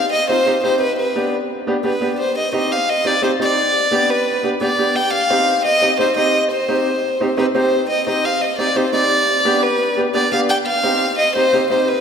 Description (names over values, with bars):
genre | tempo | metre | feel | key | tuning
latin | 174 BPM | 4/4 | straight | C harmonic minor | A4 = 440 Hz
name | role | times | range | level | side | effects
rich violin | melody | 0.0-12.0 s | B4 to G5 | -16 LUFS | left 1 dB | none
bright upright piano | accompaniment | 0.3-11.9 s | B3 to G4 | -20 LUFS | right 1 dB | none
room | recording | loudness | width
wet church reverb, RT60 3.5 s | recorded in a church or concert hall | -15 LUFS | side -7 dB against mid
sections
0.0-7.7 A section; 7.7-12.0 A section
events
none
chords
0.0 Cm; 0.8 G; 2.2 Cm; 3.6 G; 5.0 Cm; 9.1 G; 10.5 Cm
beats
0.12 0.47 | 0.81 1.16 1.50 1.85 | 2.19 2.54 2.88 3.23 | 3.57 3.92 4.27 4.61 | 4.96 5.30 5.65 5.99 | 6.34 6.69 7.03 7.38 | 7.72 8.07 8.42 8.76 | 9.11 9.45 9.80 10.15 | 10.49 10.84 11.18 11.53 | 11.88